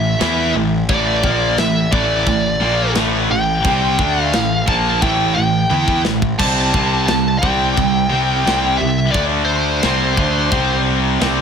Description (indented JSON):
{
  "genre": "heavy metal",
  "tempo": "87 BPM",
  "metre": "4/4",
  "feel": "straight",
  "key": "A phrygian",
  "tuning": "A4 = 439 Hz",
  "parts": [
    { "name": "high-gain lead guitar", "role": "melody", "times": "0.0-10.8 s", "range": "C5 to A5", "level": "-19 LUFS", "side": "equal", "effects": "distortion, ping-pong delay" },
    { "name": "distorted electric guitar", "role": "riff", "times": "0.0-11.4 s", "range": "A2 to E4", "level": "-24 LUFS", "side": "equal", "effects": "distortion" },
    { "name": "high-gain distorted guitar", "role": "riff", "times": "0.0-11.4 s", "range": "A2 to E4", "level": "-21 LUFS", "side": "left 12 dB", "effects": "distortion" },
    { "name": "tight distorted guitar", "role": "riff", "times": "0.0-11.4 s", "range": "A2 to E4", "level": "-22 LUFS", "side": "right 12 dB", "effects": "distortion" },
    { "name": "fuzz picked electric bass", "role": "bass", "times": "0.0-11.4 s", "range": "A1 to E2", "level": "-21 LUFS", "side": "equal", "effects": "overdrive" },
    { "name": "tight metal drum kit", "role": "drums", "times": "0.2-11.4 s", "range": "china cymbal, crash cymbal, kick drum, snare drum, toms", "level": "-22 LUFS", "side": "equal", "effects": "none" }
  ],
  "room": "small room ambience",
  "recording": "none",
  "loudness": "-14 LUFS",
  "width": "side -7 dB against mid",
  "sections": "0.0-11.4 A section",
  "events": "drum fill 5.7-6.4",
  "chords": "0.0 Am; 6.4 C5; 9.1 D5; 9.8 C5"
}